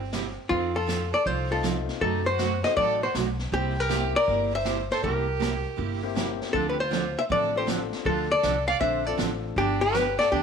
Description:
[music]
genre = country, western swing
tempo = 159 BPM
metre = 4/4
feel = swing 66% on 8ths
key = C mixolydian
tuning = A4 = 440 Hz
[part]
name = archtop guitar, miked and amplified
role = melody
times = 0.0-10.4 s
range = F4 to F5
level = -25 LUFS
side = left 3 dB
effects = none
[part]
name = clear fiddle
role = second line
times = 0.0-10.4 s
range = C4 to D5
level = -33 LUFS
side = right 10 dB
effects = none
[part]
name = upright bass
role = bass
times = 0.0-10.4 s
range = G1 to F#2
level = -32 LUFS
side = left 1 dB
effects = none
[part]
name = picked steel-string acoustic guitar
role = accompaniment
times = 0.1-10.4 s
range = C3 to A4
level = -32 LUFS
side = right 12 dB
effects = none
[part]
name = vintage brush drum kit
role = drums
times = 0.1-10.4 s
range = brushed snare drum, hi-hat, kick drum, snare drum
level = -36 LUFS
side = left 2 dB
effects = none
[part]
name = clear upright piano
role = accompaniment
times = 1.5-9.5 s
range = A3 to A4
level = -34 LUFS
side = left 12 dB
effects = none
[sound]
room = moderate plate reverb, RT60 1.0 s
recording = 1960s-style stereo with parts hard left and right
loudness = -23 LUFS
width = side -6 dB against mid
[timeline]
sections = 0.0-10.4 A section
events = none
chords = 0.0 C7; 0.5 F7; 2.0 F#dim7; 3.5 C7; 6.5 Dm7; 9.6 G7

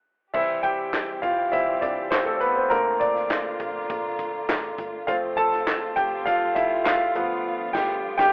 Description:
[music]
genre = piano-driven pop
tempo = 101 BPM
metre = 4/4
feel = straight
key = unclear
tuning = A4 = 440 Hz
[part]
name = clear concert grand piano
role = accompaniment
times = 0.3-8.3 s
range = D3 to A5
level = -25 LUFS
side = equal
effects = none
[part]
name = warm studio string section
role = sustained chords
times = 0.3-8.3 s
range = Bb2 to G4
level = -38 LUFS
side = equal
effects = none
[part]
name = slap-like FM bass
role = bass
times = 0.3-8.3 s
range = F1 to C2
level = -44 LUFS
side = equal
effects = none
[part]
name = natural country drum kit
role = drums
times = 0.3-8.3 s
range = crash cymbal, handclaps, hi-hat, kick drum, snare drum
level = -31 LUFS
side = equal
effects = none
[part]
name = group handclap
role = percussion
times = 5.7-7.0 s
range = none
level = barely audible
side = none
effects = none
[sound]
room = moderate studio reverb, RT60 0.6 s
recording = rough home demo mix, telephone sound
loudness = -24 LUFS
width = mono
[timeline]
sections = 0.3-8.3 A section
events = stop 0.0-0.3; grand piano solo 0.3-8.3; band accent 7.5-8.3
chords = 0.3 C; 2.7 Bbmaj7; 5.1 F; 7.2 G7

